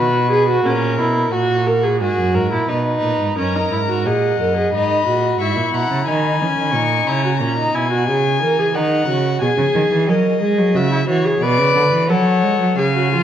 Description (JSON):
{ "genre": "classical, baroque-style fugue for string quartet", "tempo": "89 BPM", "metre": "3/4", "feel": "straight", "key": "unclear", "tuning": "A4 = 436 Hz", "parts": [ { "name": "rich violin", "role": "second line", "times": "0.0-13.2 s", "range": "F#4 to A#5", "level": "-22 LUFS", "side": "left 4 dB", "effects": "none" }, { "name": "rich viola", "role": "accompaniment", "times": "0.0-13.2 s", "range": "C#4 to B4", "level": "-18 LUFS", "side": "right 1 dB", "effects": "none" }, { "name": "rich cello", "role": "bass", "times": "0.0-13.2 s", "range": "F#2 to G#3", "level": "-19 LUFS", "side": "right 3 dB", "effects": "none" }, { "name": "dark violin", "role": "melody", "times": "3.4-7.4, 11.4-13.2 s", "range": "F#5 to D6", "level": "-22 LUFS", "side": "left 10 dB", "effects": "none" } ], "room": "moderate concert hall reverb, RT60 2.2 s", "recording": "worn, warbling old tape, cassette tape, warbly pitch drift", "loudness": "-15 LUFS", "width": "side -10 dB against mid", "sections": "0.0-3.4 A section; 3.4-13.2 B section", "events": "none", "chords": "0.0 B5; 0.6 A#dim; 1.3 F#7/A#; 2.7 B; 3.4 D#m/F#; 4.7 G#m7; 5.4 C#m/G#; 6.7 F#7/A# (rootless); 7.4 A#m7b5; 8.7 D#m; 9.4 G#7(no3); 10.8 C#m; 11.4 Bmadd9; 12.1 F#m" }